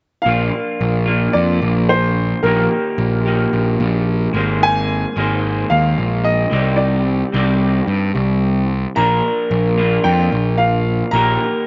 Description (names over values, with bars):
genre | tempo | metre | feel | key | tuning
rock | 110 BPM | 4/4 | straight | unclear | A4 = 440 Hz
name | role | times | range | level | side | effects
clear upright piano | melody | 0.2-11.7 s | Bb4 to Bb5 | -22 LUFS | equal | slapback echo
electric guitar through a small old amp | riff | 0.2-11.7 s | Bb2 to D5 | -23 LUFS | equal | spring reverb
fuzz picked electric bass | bass | 0.3-11.4 s | Ab1 to G2 | -19 LUFS | equal | overdrive
room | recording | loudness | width
little or no reverb | recorded outdoors, with no room sound, nothing above 7.9 kHz | -17 LUFS | mono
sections
0.3-11.7 A section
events
none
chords
0.3 Bb; 2.4 Eb/Bb; 4.4 Abadd9; 6.5 Cmadd9; 9.0 Bb; 11.1 Eb/Bb